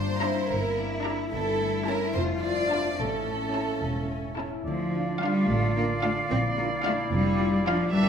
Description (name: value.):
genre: cinematic, playful, whimsical film cue.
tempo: 73 BPM (dotted quarters).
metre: 6/8.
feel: straight.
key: D minor.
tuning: A4 = 440 Hz.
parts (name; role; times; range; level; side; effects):
warm chamber violin section; second line; 0.0-8.1 s; F4 to D5; -30 LUFS; right 1 dB; none.
concert harp; arpeggios; 0.0-8.1 s; F2 to D5; -33 LUFS; left 6 dB; none.
rich chamber double bass section; bass; 0.0-8.1 s; E1 to D2; -32 LUFS; right 2 dB; none.
rich studio cello section; bass; 0.0-8.1 s; F3 to F4; -29 LUFS; equal; none.
rich chamber violin section; melody; 0.2-8.1 s; E5 to Bb5; -34 LUFS; left 1 dB; none.
rich studio viola section; accompaniment; 0.2-8.1 s; C#4 to F4; -36 LUFS; right 1 dB; none.
bright silver concert flute; second line; 4.7-8.1 s; E5 to F5; -34 LUFS; equal; none.
clear oboe; second line; 4.7-8.1 s; D5; -33 LUFS; right 3 dB; none.
warm clarinet; second line; 4.7-8.1 s; D4 to F4; -34 LUFS; left 2 dB; none.
warm French horn section; sustained chords; 4.9-7.8 s; D4 to F4; -36 LUFS; right 1 dB; none.
room: wet stone room reverb, RT60 1.3 s.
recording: none.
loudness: -24 LUFS.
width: side -7 dB against mid.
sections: 0.0-4.7 A section; 4.7-8.1 B section.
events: none.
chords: 0.0 Em7b5/G; 1.3 A7/G; 2.1 Dm/F; 3.0 A; 4.7 Dm; 6.3 Bb.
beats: 0.50 | 1.32 2.15 | 2.98 3.82 | 4.66 5.48 | 6.30 7.11 | 7.92.